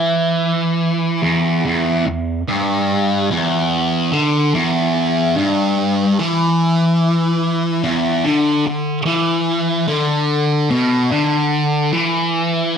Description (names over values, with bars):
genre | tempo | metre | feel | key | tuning
rock | 73 BPM | 4/4 | straight | unclear | A4 = 444 Hz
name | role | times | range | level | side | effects
thick fuzz guitar | solo | 0.0-12.8 s | E2 to E3 | -15 LUFS | equal | distortion, phaser
room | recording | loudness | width
light reverb, digital ambience | none | -15 LUFS | side -7 dB against mid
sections
0.0-12.8 A section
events
none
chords
none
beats
0.01 0.84 | 1.66 2.48 3.31 4.13 | 4.95 5.77 6.60 7.42 | 8.24 9.07 9.89 10.71 | 11.54 12.36